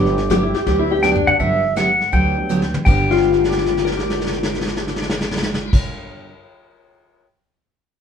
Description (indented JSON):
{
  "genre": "country, western swing",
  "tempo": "164 BPM",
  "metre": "4/4",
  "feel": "swing 66% on 8ths",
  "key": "G major",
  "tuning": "A4 = 439 Hz",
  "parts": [
    { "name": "pedal steel guitar", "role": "melody", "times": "0.0-5.7 s", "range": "G4 to G5", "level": "-20 LUFS", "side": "equal", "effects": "none" },
    { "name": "picked steel-string acoustic guitar", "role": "accompaniment", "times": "0.0-6.3 s", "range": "G2 to G4", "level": "-24 LUFS", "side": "right 3 dB", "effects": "none" },
    { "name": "warm upright piano", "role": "accompaniment", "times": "0.0-6.0 s", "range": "G2 to D7", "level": "-27 LUFS", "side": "right 2 dB", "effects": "none" },
    { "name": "upright bass", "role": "bass", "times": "0.0-5.7 s", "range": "G1 to D2", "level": "-25 LUFS", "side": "equal", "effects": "none" },
    { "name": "vintage brush drum kit", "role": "drums", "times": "0.1-7.3 s", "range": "brushed snare drum, crash cymbal, hi-hat, kick drum, snare drum, toms", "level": "-22 LUFS", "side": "equal", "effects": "none" },
    { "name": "clean lap steel guitar", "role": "second line", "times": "0.3-5.7 s", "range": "D4 to Bb4", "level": "-20 LUFS", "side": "left 6 dB", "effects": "none" }
  ],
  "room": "moderate large studio reverb, RT60 0.9 s",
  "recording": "band playing live in one room",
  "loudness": "-15 LUFS",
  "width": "side -7 dB against mid",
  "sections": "0.0-1.4 A section; 1.4-2.9 B section; 2.9-5.8 C section",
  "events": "drum fill 1.0-1.4, 2.5-2.9, 3.0-5.7",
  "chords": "0.0 Gmaj7",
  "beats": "0.30 0.67 1.03 | 1.40 1.77 2.13 2.50 | 2.87 3.23 3.60 3.96 | 4.33 4.70 5.06 5.43"
}